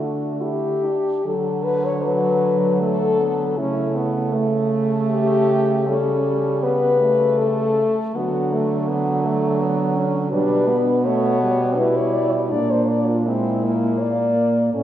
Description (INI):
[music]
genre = classical, lyrical piece for horn quartet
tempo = 64-84 BPM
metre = 3/4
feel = rubato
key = D major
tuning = A4 = 439 Hz
[part]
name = mellow French horn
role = melody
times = 0.0-14.8 s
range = D4 to D5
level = -21 LUFS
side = left 4 dB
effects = none
[part]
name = warm French horn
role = second line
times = 0.0-14.8 s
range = F#3 to F#4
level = -25 LUFS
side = right 4 dB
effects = none
[part]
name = warm French horn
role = accompaniment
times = 0.0-14.8 s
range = F#3 to E4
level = -24 LUFS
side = equal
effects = none
[part]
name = warm French horn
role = bass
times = 0.0-14.8 s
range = A2 to D3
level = -25 LUFS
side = right 2 dB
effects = none
[sound]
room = wet recital hall reverb, RT60 1.5 s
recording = recorded in a church or concert hall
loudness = -17 LUFS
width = side -11 dB against mid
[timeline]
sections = 0.0-1.3 A section; 1.3-14.8 A section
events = none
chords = 0.0 D; 3.6 A/C#; 8.1 D; 10.3 G/B; 12.5 Bb7